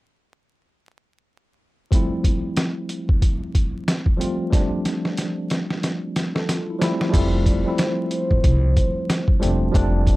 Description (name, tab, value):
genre	hip hop, boom-bap hip-hop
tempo	92 BPM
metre	4/4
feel	swing 59% on 16ths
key	F major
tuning	A4 = 440 Hz
part	tine electric piano	accompaniment	1.9-10.2 s	F3 to A4	-24 LUFS	equal	overdrive, fast stereo tremolo, high-pass filter, low-pass filter
part	trip hop sampler-style drum kit	drums	1.9-10.2 s	crash cymbal, hi-hat, kick drum, snare drum	-20 LUFS	equal	none
part	upright bass	bass	7.1-10.2 s	E1 to C2	-20 LUFS	equal	none
part	vibraphone with soft mallets	melody	7.5-10.2 s	C5 to D5	-28 LUFS	equal	high-pass filter, low-pass filter
room	little or no reverb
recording	dry, gritty hardware recording, vinyl crackle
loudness	-19 LUFS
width	side -19 dB against mid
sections	1.9-7.1 A section; 7.1-10.2 B section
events	drum fill 4.5-7.1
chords	1.9 Fmaj7